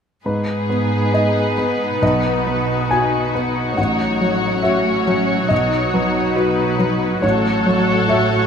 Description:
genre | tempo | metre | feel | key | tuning
cinematic | 69 BPM | 4/4 | rubato | unclear | A4 = 439 Hz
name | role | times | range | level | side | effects
muted symphonic violin section | second line | 0.3-8.5 s | F#4 to C#5 | -23 LUFS | left 3 dB | none
clear grand piano | accompaniment | 0.3-8.5 s | A1 to G#5 | -19 LUFS | equal | none
muted studio viola section | accompaniment | 0.3-8.5 s | F#3 to F#4 | -22 LUFS | left 1 dB | none
muted studio cello section | bass | 0.3-8.5 s | G#2 to B2 | -23 LUFS | right 2 dB | none
room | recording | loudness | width
moderate scoring stage reverb, RT60 1.7 s | close, detailed microphones | -15 LUFS | side -7 dB against mid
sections
0.3-8.5 A section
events
none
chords
0.3 G#m; 2.0 B; 3.8 F#m/A; 5.5 B; 7.2 F#m/A

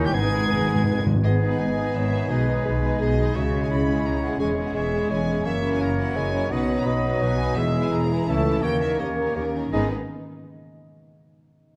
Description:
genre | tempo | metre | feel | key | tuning
classical, dramatic, fast romantic movement for symphony orchestra | 170 BPM | 3/4 | straight | G# minor | A4 = 442 Hz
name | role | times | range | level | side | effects
bright oboe | second line | 0.0-9.9 s | G4 to E5 | -35 LUFS | equal | none
clear clarinet | second line | 0.0-9.9 s | D#4 to D#5 | -34 LUFS | equal | none
clear symphonic violin section | second line | 0.0-9.9 s | C#4 to G#5 | -39 LUFS | equal | none
mellow concert flute | second line | 0.0-1.1 s | G5 to G#5 | -38 LUFS | equal | none
rich symphonic viola section | accompaniment | 0.0-9.9 s | D#3 to B4 | -35 LUFS | equal | none
warm bassoon | accompaniment | 0.0-9.9 s | F#3 to C#4 | -32 LUFS | equal | none
concert harp | arpeggios | 0.0-9.9 s | E2 to D#5 | -31 LUFS | equal | none
mellow tuba | bass | 0.0-1.2 s | G#1 | -34 LUFS | equal | none
rich symphonic double bass section | bass | 0.0-9.9 s | E1 to D#2 | -31 LUFS | equal | none
rich studio violin section | melody | 0.1-9.9 s | A#4 to G#6 | -39 LUFS | equal | none
dark French horn section | sustained chords | 0.1-9.9 s | F#3 to E4 | -34 LUFS | equal | none
clear trumpet section | stabs | 0.1-1.0 s | G4 to G#4 | -37 LUFS | equal | none
clear symphonic cello section | bass | 0.1-9.9 s | C#2 to G#3 | -32 LUFS | equal | none
timpani | percussion | 0.1-1.2 s | G#2 | -27 LUFS | equal | none
room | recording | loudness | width
moderate scoring stage reverb, RT60 1.9 s | none | -23 LUFS | mono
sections
0.0-1.2 A section; 1.2-9.7 A section; 9.7-10.8 B section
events
timpani fill 0.1-1.2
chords
0.1 G#m; 2.3 G#m/B; 3.4 C#m; 4.4 C#m/E; 5.5 F#7; 6.5 B; 7.6 E; 8.3 A/C#; 8.6 D#7; 9.7 G#m

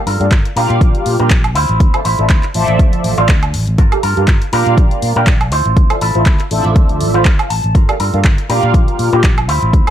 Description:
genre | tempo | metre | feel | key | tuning
filtered disco house | 121 BPM | 4/4 | swing 55% on 16ths | D minor | A4 = 439 Hz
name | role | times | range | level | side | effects
electric guitar with an envelope filter | riff | 0.1-9.9 s | D4 to A5 | -19 LUFS | equal | sidechain pumping, low-pass filter
fingered electric bass | bass | 0.1-9.8 s | G1 to Bb2 | -17 LUFS | equal | sidechain pumping, low-pass filter
house drum kit | drums | 0.1-9.9 s | handclaps, hi-hat, woodblock | -21 LUFS | right 1 dB | none
mellow synth brass | accompaniment | 0.2-9.9 s | F3 to G5 | -17 LUFS | right 1 dB | chorus, phaser, cassette tape, sidechain pumping, low-pass filter
electronic kick drum | drums | 0.3-9.8 s | none | -11 LUFS | equal | overdrive
room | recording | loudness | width
little or no reverb | none | -10 LUFS | side -10 dB against mid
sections
0.0-9.9 A section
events
clean electric guitar fill 7.0-7.8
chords
0.0 Gm9; 0.6 Bb6; 1.6 Dm9; 3.8 Gm9; 4.5 Bb6; 5.5 Dm9; 7.8 Gm9; 8.5 Bb6

